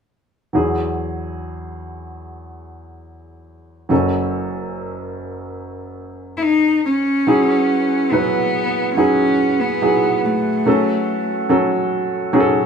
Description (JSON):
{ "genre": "pop", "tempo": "71 BPM", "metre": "4/4", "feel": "straight", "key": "E major", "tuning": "A4 = 440 Hz", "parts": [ { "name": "warm upright piano", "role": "accompaniment", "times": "0.5-12.7 s", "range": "F#1 to B4", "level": "-19 LUFS", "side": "right 1 dB", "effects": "none" }, { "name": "warm cello", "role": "melody", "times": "6.4-11.5 s", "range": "A3 to E4", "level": "-18 LUFS", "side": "left 2 dB", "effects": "none" }, { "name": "glass harmonica", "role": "sustained chords", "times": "7.3-12.7 s", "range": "C#4 to F#5", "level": "-23 LUFS", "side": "right 2 dB", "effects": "none" } ], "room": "wet studio reverb, RT60 0.6 s", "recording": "band playing live in one room", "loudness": "-15 LUFS", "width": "side -6 dB against mid", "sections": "0.5-7.3 A section; 7.3-12.7 B section", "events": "none", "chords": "0.5 Eadd9; 3.9 F#m; 7.3 Eadd9; 10.7 F#m" }